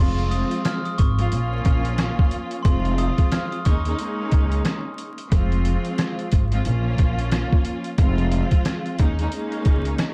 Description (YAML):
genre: hip hop, boom-bap hip-hop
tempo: 90 BPM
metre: 4/4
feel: swing 61% on 16ths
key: F minor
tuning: A4 = 441 Hz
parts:
  - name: glockenspiel with soft plastic mallets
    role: melody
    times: 0.0-4.8 s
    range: C6 to F6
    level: -35 LUFS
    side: equal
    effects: high-pass filter, low-pass filter, delay
  - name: clear studio string section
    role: accompaniment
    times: 0.0-10.1 s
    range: F3 to F4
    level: -29 LUFS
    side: equal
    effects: high-pass filter, low-pass filter
  - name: upright bass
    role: bass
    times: 0.0-9.9 s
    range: F1 to Eb2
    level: -25 LUFS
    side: equal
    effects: none
  - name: trip hop sampler-style drum kit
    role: drums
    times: 0.2-10.1 s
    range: hi-hat, kick drum, rim click, snare drum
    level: -23 LUFS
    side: equal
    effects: none
room: small room ambience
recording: dark, warm production, vinyl crackle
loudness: -22 LUFS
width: mono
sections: 0.0-10.1 A section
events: none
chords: 0.0 Fm; 1.3 Bbm; 2.7 Fm; 3.7 Eb7sus4; 5.3 Fm; 6.7 Bbm; 8.0 Fm; 9.0 Eb7sus4